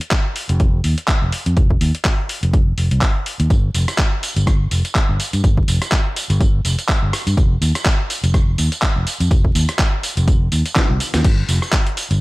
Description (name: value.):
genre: deep house.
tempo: 124 BPM.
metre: 4/4.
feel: swing 56% on 16ths.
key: unclear.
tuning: A4 = 440 Hz.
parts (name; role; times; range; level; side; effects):
dusty soul sampler-style drum kit; drums; 0.0-12.2 s; crash cymbal, handclaps, hi-hat, rim click, snare drum, tambourine; -21 LUFS; equal; none.
electronic kick drum; drums; 0.1-11.8 s; none; -16 LUFS; equal; none.
fingered electric bass; bass; 0.5-12.2 s; F1 to G2; -17 LUFS; equal; sidechain pumping.
room: little or no reverb.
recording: vinyl crackle.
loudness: -15 LUFS.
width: side -21 dB against mid.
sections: 0.0-11.2 A section.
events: drum fill 10.8-11.2.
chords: none.